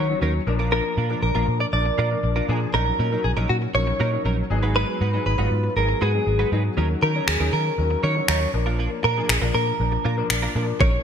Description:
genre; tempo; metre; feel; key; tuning
dance-pop; 119 BPM; 4/4; straight; unclear; A4 = 440 Hz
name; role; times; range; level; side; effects
direct-recorded clean electric guitar; melody; 0.0-11.0 s; Gb4 to D5; -25 LUFS; equal; wide subtle chorus, ping-pong delay
direct-recorded clean electric guitar; riff; 0.0-11.0 s; Gb3 to Cb5; -30 LUFS; right 5 dB; analog chorus
vintage muted fingered electric bass; bass; 0.0-11.0 s; Ab1 to Eb3; -23 LUFS; equal; sidechain pumping
impact; sound effects; 0.1-0.7 s; none; barely audible; none; none
warm grand piano; accompaniment; 0.1-11.0 s; F3 to Db5; -29 LUFS; left 5 dB; ensemble chorus, sidechain pumping
smooth R&B drum kit; drums; 7.3-10.9 s; finger snaps, kick drum; -23 LUFS; equal; gated reverb
room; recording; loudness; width
light reverb; bright 1980s-style digital production; -20 LUFS; side -8 dB against mid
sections
0.0-11.0 A section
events
impact 0.0-0.7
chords
0.5 Bb; 2.7 Ebm7/Bb; 4.5 Abm7; 6.8 Ebm7; 8.5 Bb

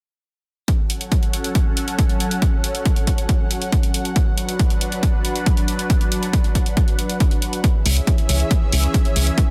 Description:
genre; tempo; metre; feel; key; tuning
uplifting trance; 138 BPM; 4/4; straight; F# minor; A4 = 439 Hz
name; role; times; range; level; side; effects
lush unison pad; sustained chords; 0.9-9.5 s; E3 to F#5; -28 LUFS; equal; chorus, phaser, sidechain pumping
electronic hi-hat; drums; 0.7-9.5 s; none; -28 LUFS; equal; overdrive
electronic kick drum; drums; 0.7-9.5 s; none; -20 LUFS; equal; overdrive
tight sequencer bass; bass; 7.9-9.3 s; C#2; -20 LUFS; equal; sidechain pumping
room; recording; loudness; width
digital ambience; none; -19 LUFS; mono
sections
0.7-9.5 A section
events
none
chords
0.7 F#m; 4.2 Bm; 7.6 C#m

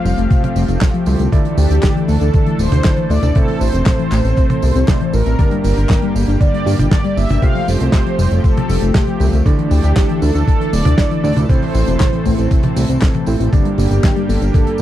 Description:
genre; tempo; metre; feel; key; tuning
italo disco; 118 BPM; 4/4; straight; D minor; A4 = 442 Hz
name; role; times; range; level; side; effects
mellow synth brass; melody; 0.0-14.8 s; G4 to F5; -23 LUFS; right 1 dB; chorus, cassette tape, tape echo
lush unison pad; sustained chords; 0.0-14.8 s; D3 to A4; -25 LUFS; equal; chorus
soft round pluck; arpeggios; 0.0-14.8 s; C3 to D4; -21 LUFS; left 5 dB; chorus, tape echo
overdriven tine electric piano; stabs; 0.0-14.8 s; G2 to D5; -23 LUFS; right 5 dB; fast tremolo
chorused synth bass; bass; 0.1-14.8 s; D1 to G2; -15 LUFS; equal; tube saturation
damped 70s drum kit; drums; 0.1-14.8 s; handclaps, hi-hat, snare drum, tambourine, toms; -21 LUFS; right 1 dB; small room ambience
electronic kick drum; drums; 0.3-14.6 s; none; -15 LUFS; equal; small room ambience
room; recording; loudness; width
little or no reverb; dry, close 1970s-style studio recording; -12 LUFS; side -13 dB against mid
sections
0.0-14.8 A section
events
none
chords
0.0 Fadd9; 1.3 Dsus2; 3.4 Am; 5.4 Gm; 7.4 Fadd9; 9.5 Dsus2; 11.5 Am; 13.5 Gm

